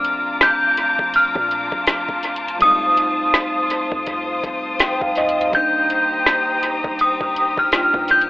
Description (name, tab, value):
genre	contemporary R&B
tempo	82 BPM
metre	4/4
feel	swing 58% on 16ths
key	C dorian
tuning	A4 = 438 Hz
part	synth chime	melody	0.0-8.3 s	Eb6 to G6	-17 LUFS	equal	ensemble chorus, tremolo, dub echo
part	muted felt-like synth keys	accompaniment	0.0-8.3 s	F3 to G5	-26 LUFS	equal	chorus, dub echo
part	clear studio string section	sustained chords	0.0-8.3 s	F4 to Eb6	-24 LUFS	left 1 dB	none
part	warm 808-style bass	bass	0.0-8.3 s	F1 to Bb2	-35 LUFS	equal	none
part	smooth R&B drum kit	drums	0.0-8.3 s	hi-hat, kick drum, snare drum	-22 LUFS	equal	dub echo
room	light reverb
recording	echo-heavy mix, telephone sound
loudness	-16 LUFS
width	side -20 dB against mid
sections	0.0-8.3 A section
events	synth keys fill 4.4-5.5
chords	0.0 Bbmaj7; 2.6 F7; 5.5 Cm7